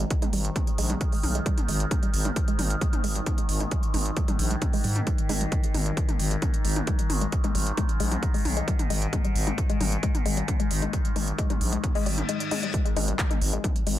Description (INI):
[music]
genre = driving peak-time techno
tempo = 133 BPM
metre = 4/4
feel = straight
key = unclear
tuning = A4 = 440 Hz
[part]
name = woody wave-folded pluck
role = riff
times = 0.0-13.9 s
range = G3 to G#3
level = -33 LUFS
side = left 2 dB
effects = chorus, sidechain pumping, digital delay
[part]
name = growling FM bass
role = bass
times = 0.0-14.0 s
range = G#1 to G#2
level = -27 LUFS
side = equal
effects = sidechain pumping
[part]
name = overtone-sweeping drone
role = drone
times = 0.0-14.0 s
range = G#2 to D#3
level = -34 LUFS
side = left 1 dB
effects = chorus, built-in reverb, sidechain pumping
[part]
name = techno drum kit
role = drums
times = 0.0-14.0 s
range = handclaps, hi-hat, toms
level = -32 LUFS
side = equal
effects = none
[part]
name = electronic kick drum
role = drums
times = 0.1-13.7 s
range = none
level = -26 LUFS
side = equal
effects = none
[part]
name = reverse cymbal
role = sound effects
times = 12.0-12.7 s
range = none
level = -35 LUFS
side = left 6 dB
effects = none
[sound]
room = light reverb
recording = dense, heavily limited modern master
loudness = -23 LUFS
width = side -13 dB against mid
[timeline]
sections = 0.0-14.0 A section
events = filter sweep on synth arpeggio sound 0.0-14.0; reverse cymbal 12.0-12.7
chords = 0.0 G#5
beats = | 0.11 0.56 1.01 1.46 | 1.91 2.36 2.81 3.27 | 3.72 4.17 4.62 5.07 | 5.52 5.97 6.42 6.87 | 7.33 7.78 8.23 8.68 | 9.13 9.58 10.03 10.48 | 10.93 11.38 11.84 12.29 | 12.74 13.19 13.64